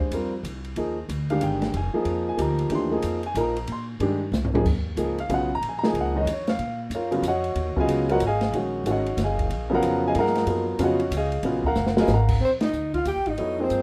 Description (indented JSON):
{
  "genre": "modal jazz",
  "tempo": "186 BPM",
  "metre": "3/4",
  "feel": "swing 64% on 8ths",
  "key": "Eb minor from 4.7 s",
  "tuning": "A4 = 440 Hz",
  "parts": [
    { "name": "warm grand piano", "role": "accompaniment", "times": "0.0-13.8 s", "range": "Db3 to C6", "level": "-26 LUFS", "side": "equal", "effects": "none" },
    { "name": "upright bass", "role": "bass", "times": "0.0-13.8 s", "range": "F1 to Bb2", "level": "-31 LUFS", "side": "equal", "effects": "none" },
    { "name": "open jazz drum kit", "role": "drums", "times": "0.0-13.8 s", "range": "crash cymbal, hi-hat, kick drum, ride cymbal, snare drum, toms", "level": "-33 LUFS", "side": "equal", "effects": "none" },
    { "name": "breathy soprano saxophone", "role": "melody", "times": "12.4-13.8 s", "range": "C5 to G5", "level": "-31 LUFS", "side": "equal", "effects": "none" },
    { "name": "breathy tenor saxophone", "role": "second line", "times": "12.4-13.8 s", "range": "C4 to G4", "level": "-28 LUFS", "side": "equal", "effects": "none" }
  ],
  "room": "wet studio reverb, RT60 0.5 s",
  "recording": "rough home demo mix",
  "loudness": "-24 LUFS",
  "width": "mono",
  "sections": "0.0-4.7 A section; 4.7-12.4 A section; 12.4-13.8 B section",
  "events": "drum fill 4.3-4.7, 11.8-12.1; band accent 12.6",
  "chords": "0.0 Bb13sus4; 4.7 Ebm11; 12.4 Bb13sus4",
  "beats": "0.13 0.45 | 0.78 1.10 1.42 | 1.75 2.07 2.39 | 2.72 3.04 3.36 | 3.69 4.01 4.33 | 4.66 4.98 5.30 | 5.62 5.95 6.27 | 6.59 6.92 7.24 | 7.56 7.89 8.21 | 8.53 8.86 9.18 | 9.50 9.82 10.15 | 10.47 10.79 11.11 | 11.44 11.76 12.08 | 12.41 12.73 13.06 | 13.38 13.71"
}